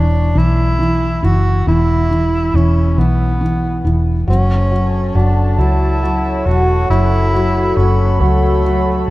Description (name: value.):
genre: pop.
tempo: 46 BPM (dotted quarters).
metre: 6/8.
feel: straight.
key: unclear.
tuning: A4 = 440 Hz.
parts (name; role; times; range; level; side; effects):
breathy tenor saxophone; melody; 0.0-9.1 s; A3 to F#4; -20 LUFS; equal; digital delay.
felt-muted upright piano; accompaniment; 0.0-9.1 s; E3 to F#3; -18 LUFS; equal; none.
vintage muted fingered electric bass; bass; 0.0-9.1 s; E1 to C#2; -14 LUFS; equal; none.
warm analog pad; sustained chords; 4.3-9.1 s; F#4 to B5; -20 LUFS; left 1 dB; chorus.
room: moderate lush hall reverb, RT60 3.1 s.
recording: rough home demo mix.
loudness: -12 LUFS.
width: side -18 dB against mid.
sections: 0.0-9.1 A section.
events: none.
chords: 0.0 E5; 4.3 F#m.